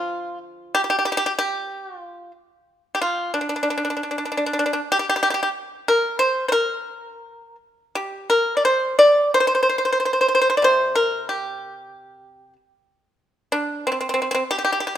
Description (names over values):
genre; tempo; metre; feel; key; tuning
chinese traditional, Chinese solo plucked strings; 83-97 BPM; 4/4; rubato; G yu mode; A4 = 440 Hz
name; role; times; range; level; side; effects
pipa; solo; 0.0-14.9 s; C3 to D5; -18 LUFS; equal; none
room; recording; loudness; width
light reverb; minimal, uncompressed stereo recording; -18 LUFS; side -11 dB against mid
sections
0.0-15.0 A section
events
none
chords
none